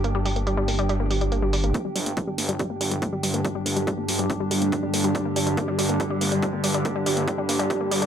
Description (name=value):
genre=driving peak-time techno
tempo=141 BPM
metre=4/4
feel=straight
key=G minor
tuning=A4 = 438 Hz
part: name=analog pluck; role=riff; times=0.0-8.0 s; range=G3 to Bb3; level=-28 LUFS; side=equal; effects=chorus, tube saturation, sidechain pumping, ping-pong delay
part: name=detuned saw bass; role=bass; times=0.0-8.1 s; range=G1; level=-27 LUFS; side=equal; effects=tube saturation, sidechain pumping, high-pass filter
part: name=electronic hi-hat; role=drums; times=0.0-8.1 s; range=none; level=-29 LUFS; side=equal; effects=low-pass filter on hats
part: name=warbly tape-like pad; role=texture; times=0.0-8.1 s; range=D4 to G5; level=-30 LUFS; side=right 4 dB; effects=chorus, built-in reverb, phaser, sidechain pumping
part: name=analog drone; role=drone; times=2.4-8.1 s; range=G2 to D3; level=-27 LUFS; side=left 1 dB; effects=chorus, sidechain pumping
part: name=electronic kick drum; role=drums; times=1.7-7.8 s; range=none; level=-30 LUFS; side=equal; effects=overdrive, high-pass filter on kick
room=moderate digital room reverb, RT60 0.9 s, digital ambience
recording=high-pass filter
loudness=-22 LUFS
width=side -8 dB against mid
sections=0.0-1.7 A section; 1.7-8.1 B section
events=filter sweep on synth arpeggio sound 0.0-1.7, 1.7-8.1; build-up 1.7-8.1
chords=0.0 G5